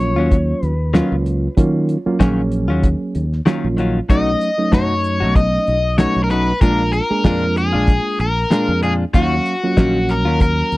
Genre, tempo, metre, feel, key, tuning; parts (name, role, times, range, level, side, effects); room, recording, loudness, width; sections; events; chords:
straight-eighth soul blues; 95 BPM; 4/4; swing 55% on 16ths; Eb minor; A4 = 439 Hz
cranked stack guitar; melody; 0.0-10.8 s; Gb4 to D#5; -20 LUFS; left 2 dB; overdrive
reed electric piano; accompaniment; 0.0-10.8 s; Gb3 to F5; -20 LUFS; right 2 dB; spring reverb
fingered electric bass; bass; 0.0-10.8 s; Bb1 to Eb3; -19 LUFS; equal
cloth-damped thuddy drum kit; drums; 0.0-10.8 s; hi-hat, kick drum, snare drum; -14 LUFS; equal
direct-recorded clean electric guitar; stabs; 0.2-10.5 s; Bb2 to F#4; -22 LUFS; left 4 dB
little or no reverb; dry, close 1970s-style studio recording; -14 LUFS; side -19 dB against mid
0.0-10.8 A section
0.0 Ebm9; 4.1 B7; 6.6 Bb7; 9.1 Ebm9